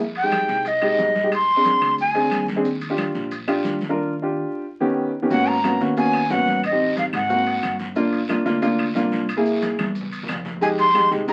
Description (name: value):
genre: Afro-Cuban jazz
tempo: 181 BPM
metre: 4/4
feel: straight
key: Eb major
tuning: A4 = 438 Hz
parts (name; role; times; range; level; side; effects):
- upright bass; bass; 0.0-11.3 s; G1 to F2; -36 LUFS; equal; none
- breathy bright jazz flute; melody; 0.2-2.5, 5.3-7.8, 10.6-11.3 s; Eb5 to C6; -21 LUFS; equal; none
- warm baby grand piano; accompaniment; 0.2-11.3 s; Eb3 to Bb4; -24 LUFS; equal; none
- congas; percussion; 0.2-11.3 s; none; -34 LUFS; equal; none
- timbales; percussion; 0.2-11.3 s; none; -36 LUFS; equal; none
- claves; percussion; 0.3-11.1 s; none; -38 LUFS; equal; none
- guiro; percussion; 0.3-11.3 s; none; -39 LUFS; equal; none
- maracas; percussion; 0.3-11.3 s; none; -51 LUFS; equal; none
room: moderate studio ambience, RT60 0.5 s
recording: very old 78 rpm record, vinyl crackle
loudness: -21 LUFS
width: mono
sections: 0.0-5.3 A section; 5.3-11.3 B section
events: drum fill 9.8-10.6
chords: 0.0 Fm9; 1.3 Bb9; 2.6 Ebmaj7; 4.6 Ebaug7; 5.3 Abm11; 6.6 Am7b5; 7.3 Ab9; 8.0 Gm7; 9.3 Caug7; 10.6 Fm9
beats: 0.32 0.66 0.99 | 1.32 1.65 1.99 2.32 | 2.65 2.98 3.31 3.65 | 3.98 4.31 4.64 4.97 | 5.31 5.64 5.97 6.30 | 6.63 6.97 7.30 7.63 | 7.96 8.29 8.63 8.96 | 9.29 9.62 9.95 10.29 | 10.62 10.95 11.28